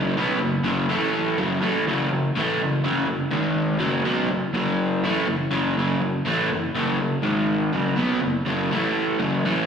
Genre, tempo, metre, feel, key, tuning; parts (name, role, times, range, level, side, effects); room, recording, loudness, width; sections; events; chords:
rock; 123 BPM; 4/4; straight; F# minor; A4 = 439 Hz
crunchy overdriven guitar; solo; 0.0-9.7 s; F#2 to B3; -20 LUFS; equal; slapback echo
wet club reverb, RT60 0.7 s; live gig heard through the venue's PA, recital hall reverb; -20 LUFS; side -7 dB against mid
0.0-1.8 A section; 1.8-9.7 B section
0.0 F#5; 0.9 A5; 1.4 F#m; 3.3 G#5; 3.8 F#m; 7.2 G#5; 7.7 F#5; 8.7 A5; 9.2 F#m